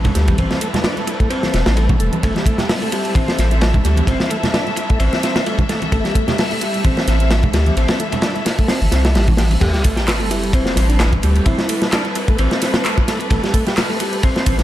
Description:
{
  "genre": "breakbeat, breaks",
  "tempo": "130 BPM",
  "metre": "4/4",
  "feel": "swing 55% on 16ths",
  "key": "A minor",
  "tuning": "A4 = 440 Hz",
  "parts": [
    { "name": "dark studio string section", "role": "sustained chords", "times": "0.0-14.6 s", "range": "G3 to E5", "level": "-24 LUFS", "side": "left 1 dB", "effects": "vintage 12-bit sampler grit, sidechain pumping" },
    { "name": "saturated sub bass", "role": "bass", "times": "0.0-14.6 s", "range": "E1 to D2", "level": "-16 LUFS", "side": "equal", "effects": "none" },
    { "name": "crunchy breakbeat drum kit", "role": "drums", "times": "0.0-14.6 s", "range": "crash cymbal, hi-hat, kick drum, ride cymbal, snare drum", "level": "-18 LUFS", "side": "equal", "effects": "tape echo" },
    { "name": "house drum kit", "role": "drums", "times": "0.0-14.6 s", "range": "handclaps, hi-hat, ride cymbal", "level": "-27 LUFS", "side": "right 1 dB", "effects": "overdrive" },
    { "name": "congas", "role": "percussion", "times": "0.0-9.6 s", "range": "none", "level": "-26 LUFS", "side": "right 1 dB", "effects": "tape echo" },
    { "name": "tonewheel organ", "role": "riff", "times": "0.1-14.6 s", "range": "G3 to G4", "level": "-23 LUFS", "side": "equal", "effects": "chorus vibrato, slow rotary speaker, tape echo" },
    { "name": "bell-like FM electric piano", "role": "melody", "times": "9.6-11.8 s", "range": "D4 to G4", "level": "-27 LUFS", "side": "right 1 dB", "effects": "chorus, old record sound, tape echo" },
    { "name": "sub drop", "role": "sound effects", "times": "9.6-11.5 s", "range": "none", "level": "-23 LUFS", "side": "equal", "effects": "none" }
  ],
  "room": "studio reverb",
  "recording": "echo-heavy mix",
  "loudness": "-14 LUFS",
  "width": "side -13 dB against mid",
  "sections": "0.0-9.6 A section; 9.6-14.6 B section",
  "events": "drop 9.6-14.6; impact 9.6-11.5",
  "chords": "0.0 Am9",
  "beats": "| 0.38 0.85 1.31 1.77 | 2.23 2.69 3.15 3.62 | 4.08 4.54 5.00 5.46 | 5.92 6.38 6.85 7.31 | 7.77 8.23 8.69 9.15 | 9.62 10.08 10.54 11.00 | 11.46 11.92 12.38 12.85 | 13.31 13.77 14.23"
}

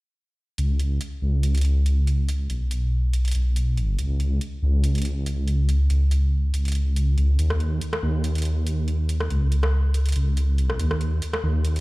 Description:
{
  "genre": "deep dubstep",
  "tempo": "141 BPM",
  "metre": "4/4",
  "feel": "swing 53% on 16ths, half-time",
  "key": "unclear",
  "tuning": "A4 = 440 Hz",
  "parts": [
    { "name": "dark detuned saw bass", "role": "bass", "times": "0.6-11.8 s", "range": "B1 to D#2", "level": "-20 LUFS", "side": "equal", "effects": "none" },
    { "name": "dubstep drum kit", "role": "drums", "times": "0.6-11.8 s", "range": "hi-hat, rim click", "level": "-32 LUFS", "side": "equal", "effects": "small room ambience" }
  ],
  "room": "little or no reverb",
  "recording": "played on a big sound system in a bare room, large studio reverb",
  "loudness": "-20 LUFS",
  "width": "side -21 dB against mid",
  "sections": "0.6-11.8 A section",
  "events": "none",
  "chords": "none",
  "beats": "| 0.58 1.01 1.43 1.86 | 2.28 2.71 3.13 3.56 | 3.99 4.41 4.84 5.26 | 5.69 6.11 6.54 6.96 | 7.39 7.82 8.24 8.67 | 9.09 9.52 9.94 10.37 | 10.79 11.22 11.65"
}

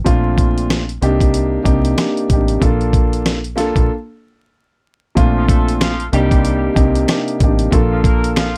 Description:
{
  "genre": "hip hop, boom-bap hip-hop",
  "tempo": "94 BPM",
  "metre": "4/4",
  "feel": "swing 59% on 16ths",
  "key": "unclear",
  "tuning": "A4 = 439 Hz",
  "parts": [
    { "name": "dark grand piano", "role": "accompaniment", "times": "0.0-8.5 s", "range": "Bb2 to A4", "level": "-20 LUFS", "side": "equal", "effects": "high-pass filter, low-pass filter" },
    { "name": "deep dub fingered electric bass", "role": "bass", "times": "0.1-8.6 s", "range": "A1 to C2", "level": "-22 LUFS", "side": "equal", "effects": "none" },
    { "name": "dusty soul sampler-style drum kit", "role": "drums", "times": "0.1-8.5 s", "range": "hi-hat, kick drum, rim click, snare drum", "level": "-18 LUFS", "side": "equal", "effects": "none" },
    { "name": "clear horn section", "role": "stabs", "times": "5.4-8.6 s", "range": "F3 to Bb4", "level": "-28 LUFS", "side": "equal", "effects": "high-pass filter, low-pass filter, analog delay" },
    { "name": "finger snaps", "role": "percussion", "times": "5.8-8.5 s", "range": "none", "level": "-36 LUFS", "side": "equal", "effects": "none" }
  ],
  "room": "little or no reverb",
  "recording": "dry, gritty hardware recording, vinyl crackle",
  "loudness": "-15 LUFS",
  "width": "mono",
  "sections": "0.0-5.2 A section; 5.2-8.6 B section",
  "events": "break 3.9-5.2",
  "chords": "0.1 Bbmaj9; 1.0 Cm9; 2.6 Bbmaj7; 5.2 Bbmaj9; 6.1 Cm9; 7.7 Gm9/Bb (rootless)",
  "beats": "| 0.06 0.70 1.34 1.98 | 2.62 3.25 3.89 4.53 | 5.17 5.81 6.45 7.08 | 7.72 8.36"
}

